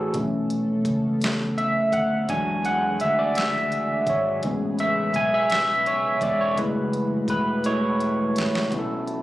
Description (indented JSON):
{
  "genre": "slow six-eight R&B",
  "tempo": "56 BPM (dotted quarters)",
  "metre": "6/8",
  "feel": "straight",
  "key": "unclear",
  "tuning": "A4 = 439 Hz",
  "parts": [
    { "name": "overdriven tine electric piano", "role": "accompaniment", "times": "0.0-9.2 s", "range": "B2 to G#5", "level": "-21 LUFS", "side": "equal", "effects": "wide subtle chorus" },
    { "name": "fretless electric bass", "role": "bass", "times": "0.0-9.2 s", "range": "E1 to E2", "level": "-33 LUFS", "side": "left 1 dB", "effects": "none" },
    { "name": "chorused pulse-width pad", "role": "sustained chords", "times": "0.1-8.7 s", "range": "C#3 to B4", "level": "-35 LUFS", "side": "left 1 dB", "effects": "none" },
    { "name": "smooth R&B drum kit", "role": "drums", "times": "0.1-9.2 s", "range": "hi-hat, kick drum, snare drum", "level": "-30 LUFS", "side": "equal", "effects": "none" }
  ],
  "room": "light reverb",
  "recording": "recorded on a phone in the room, club reverb, compression",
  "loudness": "-21 LUFS",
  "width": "side -16 dB against mid",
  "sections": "0.0-8.7 A section",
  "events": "tine electric piano solo 0.0-8.7; drum fill 7.6-8.7",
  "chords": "0.1 B9sus4; 2.3 E9; 4.4 Amaj9; 6.6 F#m9; 8.7 B9sus4"
}